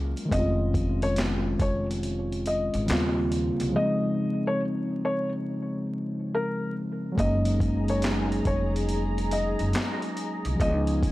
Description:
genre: lo-fi hip hop.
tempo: 70 BPM.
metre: 4/4.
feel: swing 64% on 16ths.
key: Db major.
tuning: A4 = 439 Hz.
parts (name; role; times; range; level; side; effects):
muted felt-like synth keys; accompaniment; 0.0-11.1 s; Db3 to F4; -28 LUFS; equal; chorus, cassette tape, low-pass filter.
upright bass; bass; 0.0-11.1 s; F1 to Eb2; -28 LUFS; equal; transformer saturation.
boom bap sampler-style drum kit; drums; 0.2-11.1 s; handclaps, hi-hat, kick drum, snare drum; -30 LUFS; equal; none.
felt-muted upright piano; melody; 0.3-11.1 s; Bb4 to Eb5; -31 LUFS; left 1 dB; low-pass filter, analog delay.
lush unison pad; sustained chords; 7.5-11.1 s; F4 to Bb5; -35 LUFS; left 1 dB; chorus, phaser, low-pass filter.
room: light reverb.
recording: dry, gritty hardware recording, vinyl crackle.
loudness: -24 LUFS.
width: side -17 dB against mid.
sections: 0.0-7.2 A section; 7.2-11.1 B section.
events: break 3.7-7.2.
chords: 0.3 Dbmaj9/F; 2.9 Eb13; 3.7 Dbmaj9; 7.2 Gb69; 10.6 Db9.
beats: | 0.32 1.17 2.03 2.89 | 3.74 4.60 5.46 6.32 | 7.17 8.03 8.89 9.74 | 10.60.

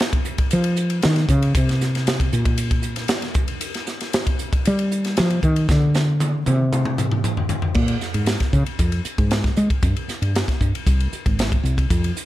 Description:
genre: electric jazz fusion.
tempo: 116 BPM.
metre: 4/4.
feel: straight.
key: unclear.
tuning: A4 = 440 Hz.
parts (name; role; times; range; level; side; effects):
crisp fusion drum kit; drums; 0.0-12.3 s; crash cymbal, hi-hat, kick drum, ride cymbal, snare drum, toms; -21 LUFS; equal; none.
woody fretless electric bass; bass; 0.5-12.1 s; Ab1 to Ab3; -19 LUFS; equal; none.
room: little or no reverb.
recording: none.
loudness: -18 LUFS.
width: side -15 dB against mid.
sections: 0.0-7.8 A section; 7.8-12.3 B section.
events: fretless electric bass solo 0.0-7.8; drum fill 5.7-7.8.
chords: none.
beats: 0.51 1.03 | 1.55 2.07 2.58 3.10 | 3.62 4.14 4.65 5.17 | 5.69 6.21 6.72 7.24 | 7.76 8.28 8.79 9.31 | 9.83 10.35 10.87 11.38 | 11.90.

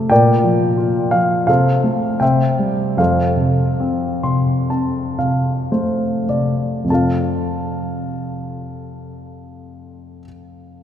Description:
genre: classical, lyrical solo piano.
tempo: 49-90 BPM.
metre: 4/4.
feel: rubato.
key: F major.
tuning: A4 = 442 Hz.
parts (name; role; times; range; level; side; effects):
warm grand piano; solo; 0.0-10.8 s; F2 to C6; -15 LUFS; equal; none.
room: wet cathedral reverb, RT60 4.5 s.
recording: recorded in a church or concert hall.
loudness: -15 LUFS.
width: side -9 dB against mid.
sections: 0.0-6.9 A section; 6.9-10.8 B section.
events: slowing down 0.1-6.9; grand piano fill 3.8-6.9.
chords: 0.1 Bb; 1.5 F/C; 2.2 C; 3.0 F.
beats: | 0.10 0.78 1.48 2.22 | 2.99 3.81 4.71 5.74 | 6.90 8.07 9.20 10.35.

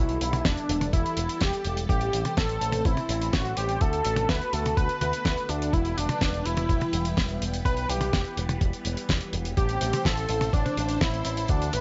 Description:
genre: italo disco.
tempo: 125 BPM.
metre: 4/4.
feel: straight.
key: E minor.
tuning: A4 = 442 Hz.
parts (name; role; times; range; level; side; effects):
unison lead; melody; 0.0-11.8 s; D4 to B4; -31 LUFS; equal; tape echo.
phased string machine; sustained chords; 0.0-11.8 s; D3 to C5; -38 LUFS; equal; ensemble chorus, phaser.
picked electric bass with an envelope filter; bass; 0.0-11.8 s; E1 to D2; -33 LUFS; equal; none.
damped 70s drum kit; drums; 0.1-11.8 s; hi-hat, snare drum, toms; -32 LUFS; equal; none.
electronic kick drum; drums; 0.5-11.6 s; none; -28 LUFS; equal; none.
room: light reverb, studio ambience.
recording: nothing above 7.7 kHz.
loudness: -26 LUFS.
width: mono.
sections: 0.0-11.8 A section.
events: none.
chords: 0.0 Em; 1.9 Am; 3.8 D6; 5.7 Em; 9.6 Am.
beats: 0.45 0.93 1.41 | 1.89 2.37 2.85 3.33 | 3.81 4.29 4.77 5.25 | 5.73 6.21 6.69 7.17 | 7.65 8.13 8.61 9.09 | 9.57 10.05 10.53 11.01 | 11.49.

